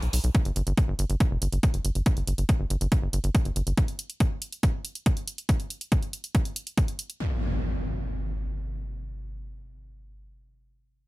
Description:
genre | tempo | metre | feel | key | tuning
psychedelic trance | 140 BPM | 4/4 | straight | G major | A4 = 440 Hz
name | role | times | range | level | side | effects
tight sequencer bass | bass | 0.0-3.7 s | F1 to B1 | -26 LUFS | equal | none
electronic hi-hat | drums | 0.0-7.2 s | none | -35 LUFS | right 2 dB | none
electronic kick drum | drums | 0.3-6.9 s | none | -23 LUFS | equal | none
impact | sound effects | 7.2-10.2 s | none | -31 LUFS | equal | none
room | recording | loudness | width
digital ambience | none | -24 LUFS | side -19 dB against mid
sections
0.0-7.2 A section; 7.2-10.6 B section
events
none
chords
none

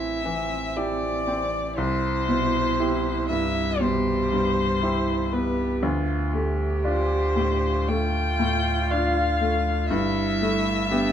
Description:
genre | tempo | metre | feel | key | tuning
neoclassical piano and strings | 59 BPM | 4/4 | rubato | unclear | A4 = 441 Hz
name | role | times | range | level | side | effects
muted violin | melody | 0.0-11.1 s | B4 to G5 | -27 LUFS | left 4 dB | none
muted cello | second line | 0.0-11.1 s | C4 to G4 | -29 LUFS | right 5 dB | none
bright baby grand piano | accompaniment | 0.0-11.1 s | C2 to G4 | -26 LUFS | left 1 dB | none
punchy sub bass | bass | 0.0-11.1 s | G1 to D2 | -29 LUFS | equal | none
room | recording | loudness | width
wet large studio reverb, RT60 1.4 s | minimal, uncompressed stereo recording | -22 LUFS | side -9 dB against mid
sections
0.0-11.1 A section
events
none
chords
0.0 Am7; 1.8 Cmaj7; 5.8 Dm7; 9.9 Gadd9

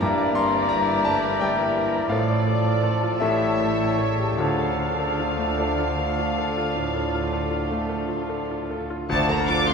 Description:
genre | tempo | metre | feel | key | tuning
classical, romantic movement for piano and orchestra | 49-58 BPM (dotted quarters) | 12/8 | rubato | D minor | A4 = 440 Hz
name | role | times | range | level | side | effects
bright grand piano | melody | 0.0-9.7 s | D2 to C6 | -24 LUFS | left 1 dB | none
dark symphonic violin section | melody | 0.0-9.7 s | A4 to D6 | -33 LUFS | left 2 dB | none
dark cor anglais | second line | 0.0-9.7 s | C#5 to D5 | -34 LUFS | equal | none
mellow clarinet | second line | 0.0-8.8 s | G4 to A4 | -35 LUFS | left 3 dB | none
mellow flute section | second line | 0.0-9.6 s | A5 to A6 | -31 LUFS | right 1 dB | none
warm studio violin section | second line | 0.0-9.7 s | A4 to F5 | -33 LUFS | left 2 dB | none
mellow bassoon | accompaniment | 0.0-9.7 s | E3 to G3 | -33 LUFS | left 1 dB | none
warm studio viola section | accompaniment | 0.0-9.7 s | A3 to G4 | -32 LUFS | equal | none
dark French horn section | sustained chords | 0.0-9.7 s | C#3 to D4 | -35 LUFS | left 2 dB | none
dark studio double bass section | bass | 0.0-9.7 s | G1 to D2 | -32 LUFS | right 2 dB | none
warm studio cello section | bass | 0.0-9.7 s | D2 to D3 | -32 LUFS | right 2 dB | none
cymbal swell, clash cymbals and concert bass drum | percussion | 4.4-9.7 s | none | -38 LUFS | right 1 dB | none
bright trombone section | sustained chords | 9.1-9.7 s | F3 to D4 | -31 LUFS | right 4 dB | none
timpani | percussion | 9.1-9.7 s | D3 | -32 LUFS | right 1 dB | none
room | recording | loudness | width
wet recital hall reverb, RT60 1.6 s | recorded in a church or concert hall | -21 LUFS | side -5 dB against mid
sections
0.0-9.1 A section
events
band accent 9.1-9.7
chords
0.0 Em7b5/G; 2.1 Dm/A; 3.2 A7; 4.4 Dm

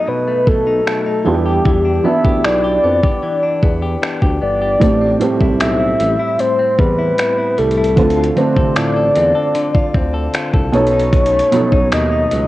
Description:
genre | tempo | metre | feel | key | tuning
contemporary R&B | 76 BPM | 4/4 | straight | A minor | A4 = 440 Hz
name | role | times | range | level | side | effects
soft octave-layered synth lead | melody | 0.0-12.5 s | G4 to E5 | -16 LUFS | left 1 dB | chorus, analog delay
felt-muted upright piano | accompaniment | 0.0-12.5 s | A2 to A4 | -20 LUFS | right 3 dB | cassette tape
direct-recorded clean electric guitar | arpeggios | 0.0-12.5 s | A2 to A4 | -23 LUFS | left 3 dB | cassette tape
smooth synth bass | bass | 0.5-12.5 s | G1 to F2 | -20 LUFS | equal | none
dusty soul sampler-style drum kit | drums | 0.5-12.5 s | finger snaps, hi-hat, kick drum | -17 LUFS | equal | vintage 12-bit sampler grit, cassette tape
room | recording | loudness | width
light reverb, digital ambience | home recording on cassette | -12 LUFS | side -16 dB against mid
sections
0.0-12.5 A section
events
none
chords
0.0 B7; 1.3 Em7; 4.8 Am7; 8.0 Dm7; 10.7 B7

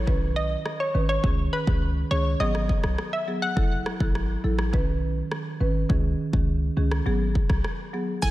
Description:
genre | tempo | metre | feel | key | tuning
dancehall | 103 BPM | 4/4 | straight | C# minor | A4 = 438 Hz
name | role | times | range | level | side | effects
warm 808-style bass | bass | 0.0-8.3 s | F#1 to C#2 | -26 LUFS | equal | none
marimba with medium mallets | accompaniment | 0.1-8.3 s | D#3 to B4 | -29 LUFS | right 1 dB | sidechain pumping
afro-pop drum kit | drums | 0.1-8.3 s | crash cymbal, kick drum, rim click, shaker | -27 LUFS | equal | none
hollow square pluck | melody | 0.4-3.5, 8.2-8.3 s | B4 to G#5 | -28 LUFS | equal | chorus, tape echo
room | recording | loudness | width
light reverb | none | -22 LUFS | side -16 dB against mid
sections
0.0-8.2 A section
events
none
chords
0.1 Badd9; 1.2 C#sus2; 2.4 G#m7; 3.6 F#m7; 4.7 Badd9; 5.9 C#sus2; 7.1 G#m7

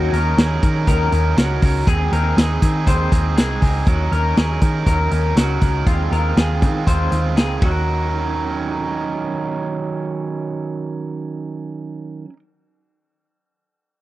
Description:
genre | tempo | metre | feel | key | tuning
jangly indie pop | 120 BPM | 4/4 | straight | Eb dorian | A4 = 440 Hz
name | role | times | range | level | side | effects
biting overdriven guitar | accompaniment | 0.0-12.4 s | Eb3 to Bb4 | -23 LUFS | right 4 dB | none
electric guitar through a small old amp | arpeggios | 0.0-9.3 s | F4 to C5 | -25 LUFS | left 4 dB | wide subtle chorus
vintage muted picked electric bass | bass | 0.0-12.3 s | C2 to Eb3 | -19 LUFS | equal | none
vintage drum kit | drums | 0.1-7.7 s | hi-hat, kick drum, ride cymbal, snare drum | -18 LUFS | equal | none
room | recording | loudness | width
studio reverb | dry, close 1970s-style studio recording | -16 LUFS | side -16 dB against mid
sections
0.0-7.9 A section; 7.9-11.9 B section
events
none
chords
0.0 Ebm7; 1.9 Ab/Eb; 3.9 Ebm7; 5.9 Fm/Eb; 7.6 Ebm7

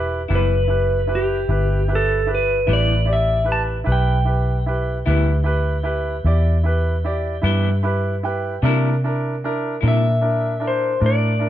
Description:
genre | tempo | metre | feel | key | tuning
slow blues | 50 BPM (dotted quarters) | 12/8 | straight | E minor | A4 = 440 Hz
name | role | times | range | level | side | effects
clear grand piano | accompaniment | 0.0-11.5 s | D4 to B5 | -25 LUFS | right 2 dB | none
vintage muted fingered electric bass | bass | 0.0-11.5 s | E1 to C3 | -19 LUFS | equal | none
electric guitar through a small old amp | accompaniment | 0.3-10.1 s | C3 to E4 | -27 LUFS | left 5 dB | tremolo
clean lap steel guitar | melody | 0.4-11.5 s | G4 to A5 | -21 LUFS | equal | none
room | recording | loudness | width
little or no reverb | dark, warm production | -17 LUFS | side -12 dB against mid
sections
0.0-11.5 A section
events
grand piano fill 7.4-8.6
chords
0.0 Em; 8.6 C7

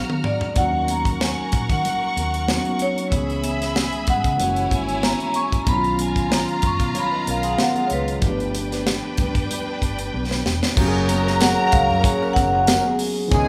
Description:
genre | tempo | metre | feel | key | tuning
lush 1970s-style soul | 94 BPM | 4/4 | swing 54% on 16ths | F# major | A4 = 440 Hz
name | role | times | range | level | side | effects
clear studio violin section | second line | 0.0-13.5 s | D4 to E#6 | -31 LUFS | equal | none
overdriven tine electric piano | accompaniment | 0.0-13.5 s | D#3 to G#4 | -29 LUFS | equal | none
vintage muted fingered electric bass | bass | 0.0-13.5 s | E1 to D#3 | -30 LUFS | equal | none
tight funk drum kit | drums | 0.1-13.5 s | crash cymbal, hi-hat, kick drum, snare drum, toms | -25 LUFS | equal | none
congas | percussion | 0.1-13.5 s | none | -35 LUFS | equal | none
vibraphone with medium hard mallets | melody | 0.3-12.9 s | B4 to C#6 | -26 LUFS | equal | none
electric guitar through a small old amp | riff | 6.9-8.2, 12.0-13.3 s | G#3 to C#5 | -31 LUFS | equal | none
dark horn section | stabs | 10.8-13.5 s | C#3 to G#4 | -30 LUFS | equal | none
tambourine | percussion | 10.8-13.5 s | none | -44 LUFS | equal | none
room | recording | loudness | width
moderate large studio reverb, RT60 1.4 s | band playing live in one room | -21 LUFS | mono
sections
0.0-10.8 A section; 10.8-13.5 B section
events
drum fill 0.0-0.6, 10.1-10.8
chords
0.0 A#7b13; 0.6 D#m7; 3.1 C#m7; 4.4 F#9; 5.7 Bmaj9#11; 8.2 G9; 10.8 F#add9

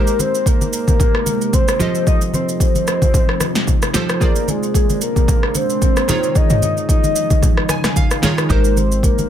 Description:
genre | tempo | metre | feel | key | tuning
amapiano | 112 BPM | 4/4 | swing 55% on 16ths | Ab major | A4 = 441 Hz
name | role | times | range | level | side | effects
soft octave-layered synth lead | melody | 0.0-9.3 s | Ab4 to Eb5 | -21 LUFS | left 2 dB | chorus, phaser, ping-pong delay
glassy digital keys | accompaniment | 0.0-9.3 s | Eb3 to Ab5 | -23 LUFS | right 2 dB | chorus
deep dark ambient pad | sustained chords | 0.4-9.3 s | C3 to G4 | -25 LUFS | equal | chorus, built-in reverb
deep house drum kit | drums | 0.1-9.3 s | kick drum, rim click, shaker, snare drum, toms | -16 LUFS | equal | overdrive
congas | percussion | 0.2-9.3 s | none | -25 LUFS | left 2 dB | none
deep log drum bass | bass | 8.5-9.3 s | Ab1 | -18 LUFS | equal | none
room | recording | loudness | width
light reverb, digital ambience | none | -14 LUFS | side -10 dB against mid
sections
0.0-9.3 A section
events
synth keys fill 7.4-8.5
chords
0.0 Abmaj9; 1.8 F7; 4.2 Bb9; 6.1 Eb9sus4; 8.5 Abmaj9

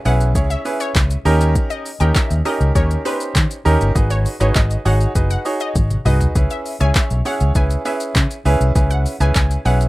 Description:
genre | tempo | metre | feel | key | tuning
dance-pop | 100 BPM | 4/4 | straight | C# minor | A4 = 440 Hz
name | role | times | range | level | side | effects
downlifter | sound effects | 0.0-1.6 s | none | -45 LUFS | equal | none
wide unison pluck | melody | 0.1-9.8 s | B4 to G#5 | -27 LUFS | moving between left 6 dB and right 1 dB | auto-pan, plate reverb, digital delay
bright grand piano | accompaniment | 0.1-9.9 s | C#4 to C#5 | -22 LUFS | right 2 dB | sidechain pumping, plate reverb
vintage muted fingered electric bass | bass | 0.1-9.9 s | F#1 to D#3 | -16 LUFS | equal | sidechain pumping
smooth R&B drum kit | drums | 0.1-9.9 s | handclaps, hi-hat, kick drum, shaker, toms | -19 LUFS | equal | overdrive
group handclap | percussion | 7.0-9.5 s | none | barely audible | none | none
room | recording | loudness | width
little or no reverb | rough home demo mix | -15 LUFS | side -19 dB against mid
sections
0.0-9.9 A section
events
drum fill 5.8-6.4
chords
0.0 C#m7; 1.3 D#7; 4.0 G#m7; 6.4 C#m7

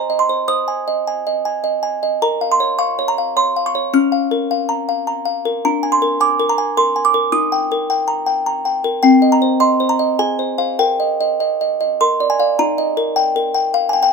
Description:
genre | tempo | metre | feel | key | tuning
classical, lullaby for music box | 105 BPM | 3/4 | straight | Eb major from 5.6 s | A4 = 438 Hz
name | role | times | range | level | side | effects
music box | solo | 0.0-14.1 s | C4 to F6 | -14 LUFS | equal | none
room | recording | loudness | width
light reverb | minimal, uncompressed stereo recording | -14 LUFS | side -4 dB against mid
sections
0.0-12.6 A section; 12.6-14.1 B section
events
none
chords
0.5 Ab/C; 2.2 Bbm; 3.9 Bbm/Db; 5.6 Bb7/D; 7.3 Eb; 9.0 Cm; 10.2 Fm/Ab; 10.8 Eb/Bb; 12.0 Bb; 12.6 Eb

